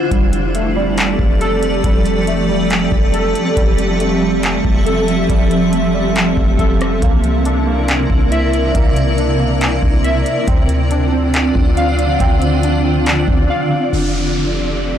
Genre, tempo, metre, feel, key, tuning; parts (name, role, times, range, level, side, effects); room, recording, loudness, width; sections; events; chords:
hip hop, atmospheric cloud-rap; 139 BPM; 4/4; half-time; F major; A4 = 440 Hz
granular cloud pad; sustained chords; 0.0-15.0 s; C3 to E5; -17 LUFS; equal; built-in reverb, sidechain pumping
warbly lo-fi synth keys; arpeggios; 0.1-13.9 s; G3 to F5; -20 LUFS; right 2 dB; chorus, digital delay
clean 808-style bass; bass; 0.1-15.0 s; F1 to D2; -19 LUFS; equal; tube saturation
booming analog drum machine; drums; 0.1-13.5 s; handclaps, hi-hat, kick drum, rim click; -16 LUFS; equal
downlifter; sound effects; 13.9-15.0 s; -24 LUFS; equal
light reverb, digital ambience; blown-out, overdriven recording, overdrive; -12 LUFS; side -9 dB against mid
0.1-13.9 A section; 13.9-15.0 B section
break 13.5-13.9
0.1 F69; 7.0 C9; 10.5 Dm7; 13.9 F69